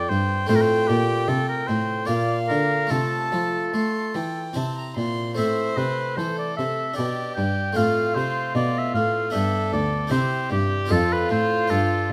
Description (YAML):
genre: classical, baroque-style sonata movement with continuo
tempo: 75 BPM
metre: 3/4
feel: straight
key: F major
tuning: A4 = 439 Hz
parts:
  - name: clear oboe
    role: melody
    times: 0.0-12.1 s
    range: G4 to G5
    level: -28 LUFS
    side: equal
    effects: none
  - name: rich violin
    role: second line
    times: 0.0-12.1 s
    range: F4 to C6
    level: -32 LUFS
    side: equal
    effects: none
  - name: harpsichord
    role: accompaniment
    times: 0.0-12.1 s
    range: D2 to A4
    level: -29 LUFS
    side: equal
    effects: none
  - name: rich cello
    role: bass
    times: 0.0-12.1 s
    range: D2 to A3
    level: -28 LUFS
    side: equal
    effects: none
room: light reverb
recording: close, detailed microphones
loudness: -23 LUFS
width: mono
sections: 0.0-12.1 A section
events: none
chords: 0.0 C; 0.5 F/A; 2.1 Bb; 2.9 F/C; 4.6 C; 5.4 Am; 7.0 G/B; 7.8 F/A; 9.3 G; 10.1 C; 10.9 F